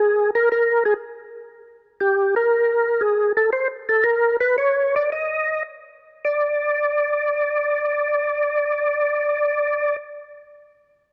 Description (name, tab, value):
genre	jazz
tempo	102-120 BPM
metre	4/4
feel	swing 69% on 8ths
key	unclear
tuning	A4 = 441 Hz
part	percussive tonewheel organ	solo	0.0-10.0 s	G4 to Eb5	-21 LUFS	equal	slow rotary speaker, overdrive, chorus vibrato
room	light reverb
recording	none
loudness	-21 LUFS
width	mono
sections	0.0-2.0 A section; 2.0-6.2 B section; 6.2-10.9 C section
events	tonewheel organ solo 0.0-2.0; slowing down 2.0-6.2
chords	none